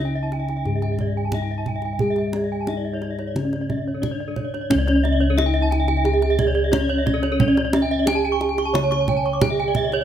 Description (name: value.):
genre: Balinese gamelan.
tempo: 89 BPM.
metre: 4/4.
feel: straight.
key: C# pelog.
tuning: A4 = 440 Hz.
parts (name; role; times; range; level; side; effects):
gamelan-type bronze metallophone; melody; 0.0-10.0 s; C#4 to C#5; -24 LUFS; right 2 dB; none.
gamelan-type bronze metallophone; accompaniment; 0.0-4.7 s; C#3 to G#3-45c; -31 LUFS; left 2 dB; none.
gamelan-type bronze metallophone; arpeggios; 0.0-10.0 s; A4-40c to D6; -29 LUFS; left 5 dB; none.
gamelan-type bossed gongs; bass; 0.0-10.0 s; C#2 to G#4-45c; -24 LUFS; left 1 dB; none.
gamelan-type bronze metallophone; arpeggios; 0.2-10.0 s; C#5 to C#6; -28 LUFS; right 4 dB; none.
kendang; percussion; 0.3-10.0 s; none; -25 LUFS; right 3 dB; none.
room: light reverb.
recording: close, detailed microphones.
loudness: -19 LUFS.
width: side -10 dB against mid.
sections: 0.0-4.7 A section; 4.7-10.0 A section.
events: none.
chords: none.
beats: 0.66 1.33 | 2.00 2.68 3.35 4.03 | 4.70 5.38 6.05 6.72 | 7.40 8.07 8.75 9.42.